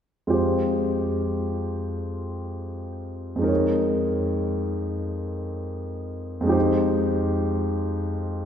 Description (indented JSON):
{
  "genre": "classical",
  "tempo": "59 BPM",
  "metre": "3/4",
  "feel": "rubato",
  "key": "F minor",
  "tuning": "A4 = 440 Hz",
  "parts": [
    { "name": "warm concert grand piano", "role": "accompaniment", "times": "0.3-8.5 s", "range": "F2 to Db5", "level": "-23 LUFS", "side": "equal", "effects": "none" }
  ],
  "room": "wet cathedral reverb, RT60 4.5 s",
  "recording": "recorded in a church or concert hall",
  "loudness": "-23 LUFS",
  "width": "side -8 dB against mid",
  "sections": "0.4-8.5 A section",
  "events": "none",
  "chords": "0.4 Fmadd9; 3.5 Eb9sus4/F; 6.5 Fm9"
}